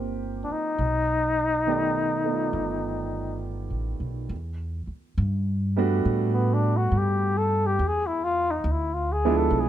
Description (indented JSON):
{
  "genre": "jazz ballad",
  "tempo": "69 BPM",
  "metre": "4/4",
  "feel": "swing 67% on 8ths",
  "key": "E minor from 4.3 s",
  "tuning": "A4 = 440 Hz",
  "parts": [
    { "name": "clear baby grand piano", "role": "accompaniment", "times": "0.0-9.7 s", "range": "Eb3 to D5", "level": "-28 LUFS", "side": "right 5 dB", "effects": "none" },
    { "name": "upright bass", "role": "bass", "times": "0.0-9.7 s", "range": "G1 to A2", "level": "-27 LUFS", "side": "equal", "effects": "none" },
    { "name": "trumpet with bucket mute", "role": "melody", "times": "0.4-9.7 s", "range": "B3 to A4", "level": "-25 LUFS", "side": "left 3 dB", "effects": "none" }
  ],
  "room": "light reverb",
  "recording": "close, detailed microphones",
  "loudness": "-23 LUFS",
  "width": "side -11 dB against mid",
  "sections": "0.0-4.3 A section; 4.3-9.7 B section",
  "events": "muted trumpet solo 4.3-9.7",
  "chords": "0.0 Cm11; 0.8 B7alt; 4.3 Em11; 7.8 E7b9"
}